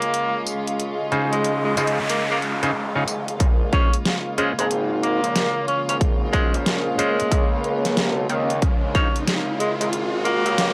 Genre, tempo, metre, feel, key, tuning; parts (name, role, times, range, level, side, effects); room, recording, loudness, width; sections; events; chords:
glitch hop; 92 BPM; 4/4; swing 64% on 16ths; Bb minor; A4 = 444 Hz
warm tenor saxophone; melody; 0.0-10.7 s; Ab3 to Db4; -27 LUFS; equal; analog delay
rich studio string section; sustained chords; 0.0-10.7 s; C3 to F4; -32 LUFS; equal; sidechain pumping
dubstep drum kit; drums; 0.0-10.7 s; hi-hat, rim click, snare drum, tambourine; -27 LUFS; equal; overdrive
granular cloud pad; texture; 0.0-10.7 s; Ab4 to F5; -32 LUFS; equal; built-in reverb, sidechain pumping
noise sweep and riser; sound effects; 1.3-10.7 s; -32 LUFS; equal
overdriven clav; stabs; 1.1-9.1 s; Db3 to Db5; -28 LUFS; equal; vintage 12-bit sampler grit, sidechain pumping, low-pass filter, analog delay
gritty driven synth bass; bass; 3.4-10.7 s; Ab1 to Eb2; -28 LUFS; equal; high-pass filter
electronic kick drum; drums; 3.4-9.1 s; -22 LUFS; equal; overdrive
light reverb; dry, gritty hardware recording; -22 LUFS; mono
0.0-3.4 A section; 3.4-10.7 B section
noise sweep 1.3-3.4; build-up 3.4-10.7; riser 3.4-10.7; filter sweep 3.4-10.7
0.0 Dbmaj7; 3.4 Bbm7